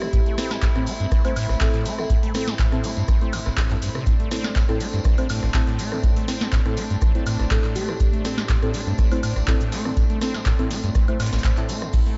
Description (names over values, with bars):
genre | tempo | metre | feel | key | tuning
acid house | 122 BPM | 4/4 | straight | A minor pentatonic | A4 = 438 Hz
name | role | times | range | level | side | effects
bell-like FM electric piano | melody | 0.0-0.4, 7.8-8.2 s | G4 | -36 LUFS | equal | chorus, tremolo, analog delay
rich studio string section | sustained chords | 0.0-12.2 s | A2 to E4 | -33 LUFS | equal | sidechain pumping
acid bass, saw | riff | 0.0-12.2 s | A1 to C4 | -30 LUFS | equal | overdrive, subtle chorus, sidechain pumping, tape echo
deep mellow chord stab | stabs | 0.0-11.6 s | C4 to C5 | -33 LUFS | equal | chorus, tape echo
booming analog drum machine | drums | 0.0-12.2 s | crash cymbal, handclaps, hi-hat, ride cymbal, rim click, snare drum, woodblock | -33 LUFS | equal | none
tambourine | percussion | 0.0-12.0 s | none | -41 LUFS | equal | none
breakbeat sampler-style drum kit | drums | 0.1-12.1 s | hi-hat, shaker, snare drum | -43 LUFS | equal | none
electronic kick drum | drums | 0.1-12.0 s | none | -23 LUFS | equal | none
room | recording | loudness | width
light reverb, digital ambience | nothing above 7.7 kHz | -22 LUFS | mono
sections
0.0-12.2 A section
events
none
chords
0.0 Am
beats
| 0.13 0.62 1.12 1.61 | 2.10 2.59 3.08 3.58 | 4.07 4.56 5.05 5.54 | 6.04 6.53 7.02 7.51 | 8.00 8.49 8.99 9.48 | 9.97 10.46 10.95 11.45 | 11.94